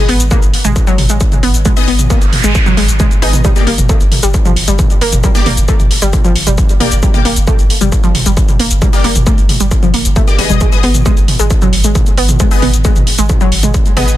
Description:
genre	driving peak-time techno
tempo	134 BPM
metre	4/4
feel	straight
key	unclear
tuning	A4 = 441 Hz
part	rave stab	stabs	0.0-14.1 s	Bb3 to Eb5	-20 LUFS	left 3 dB	chorus, built-in reverb, phaser, sidechain pumping, dub echo
part	warbly dusty pluck	riff	0.1-14.0 s	F3 to Eb4	-17 LUFS	equal	chorus, sidechain pumping, dub echo
part	saturated sub bass	bass	0.1-14.2 s	G1 to Ab1	-14 LUFS	equal	overdrive, sidechain pumping, low-pass filter
part	techno drum kit	drums	0.1-14.2 s	hi-hat, shaker, toms	-17 LUFS	equal	sidechain pumping on hats, sidechain pumping on toms, sidechain pumping on perc
part	electronic kick drum	drums	0.3-13.8 s	none	-12 LUFS	equal	distortion
part	noise sweep	sound effects	2.0-3.4 s	none	-20 LUFS	right 3 dB	none
room	digital ambience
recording	dense, heavily limited modern master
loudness	-9 LUFS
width	side -14 dB against mid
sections	0.0-14.2 A section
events	noise sweep 2.0-3.4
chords	0.0 Abm; 3.4 Gm; 10.6 Abm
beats	0.31 0.76 1.21 | 1.65 2.10 2.55 3.00 | 3.44 3.89 4.34 4.79 | 5.24 5.68 6.13 6.58 | 7.03 7.47 7.92 8.37 | 8.82 9.27 9.71 10.16 | 10.61 11.06 11.51 11.95 | 12.40 12.85 13.30 13.74

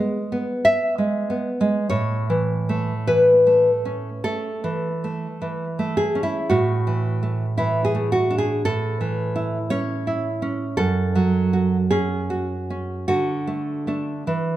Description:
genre	classical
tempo	42-57 BPM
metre	4/4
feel	rubato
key	A major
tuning	A4 = 440 Hz
part	nylon-string guitar	accompaniment	0.0-14.6 s	F#2 to E5	-20 LUFS	right 1 dB	none
room	moderate recital hall reverb, RT60 1.7 s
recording	dark, warm production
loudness	-20 LUFS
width	side -13 dB against mid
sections	0.0-1.9 A section; 1.9-14.6 B section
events	none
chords	0.0 E; 1.9 A; 6.5 F#m9/A; 8.7 A; 10.8 F#m; 13.1 D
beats	0.64 | 1.90 3.07 4.24 5.41 | 6.51 7.59 8.66 9.72 | 10.78 11.91 13.08 14.26

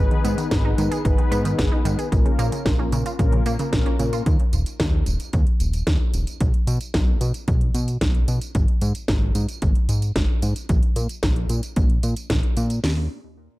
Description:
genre	italo disco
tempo	112 BPM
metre	4/4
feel	straight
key	unclear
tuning	A4 = 439 Hz
part	mellow synth brass	stabs	0.0-4.2 s	Bb3 to Cb5	-27 LUFS	left 4 dB	chorus, digital delay
part	fat analog bass	bass	0.0-13.1 s	Eb1 to Cb3	-23 LUFS	equal	none
part	analog pluck	arpeggios	0.1-4.2 s	Db3 to Ab4	-28 LUFS	right 2 dB	chorus, digital delay
part	house drum kit	drums	0.1-12.8 s	hi-hat, snare drum, tambourine	-29 LUFS	equal	overdrive
part	house drum kit	drums	0.5-13.0 s	hi-hat, kick drum, snare drum	-21 LUFS	equal	overdrive
room	little or no reverb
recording	dark, warm production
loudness	-19 LUFS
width	side -19 dB against mid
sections	0.0-12.8 A section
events	none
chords	0.0 Abm; 2.1 Bbm; 4.3 N.C.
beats	0.51 1.05 1.58 | 2.12 2.66 3.19 3.73 | 4.26 4.80 5.33 5.87 | 6.41 6.94 7.48 8.01 | 8.55 9.09 9.62 10.16 | 10.69 11.23 11.76 12.30 | 12.84

